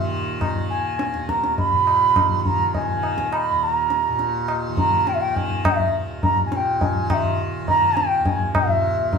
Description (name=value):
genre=indian classical, Hindustani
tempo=103 BPM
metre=4/4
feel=straight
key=unclear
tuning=A4 = 440 Hz
part: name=bansuri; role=melody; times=0.0-9.2 s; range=Fb5 to Cb6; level=-20 LUFS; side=right 2 dB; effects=none
part: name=tanpura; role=drone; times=0.0-9.2 s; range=Eb2 to Eb3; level=-28 LUFS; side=right 1 dB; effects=none
part: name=tabla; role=percussion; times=0.4-9.2 s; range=none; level=-23 LUFS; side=left 1 dB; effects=none
room=wet studio reverb, RT60 0.9 s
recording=band playing live in one room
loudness=-18 LUFS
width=side -5 dB against mid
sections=0.0-8.6 A section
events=none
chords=none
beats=0.41 0.99 | 1.58 2.16 2.74 3.33 | 3.91 4.49 5.07 5.65 | 6.23 6.81 7.39 7.97 | 8.55 9.13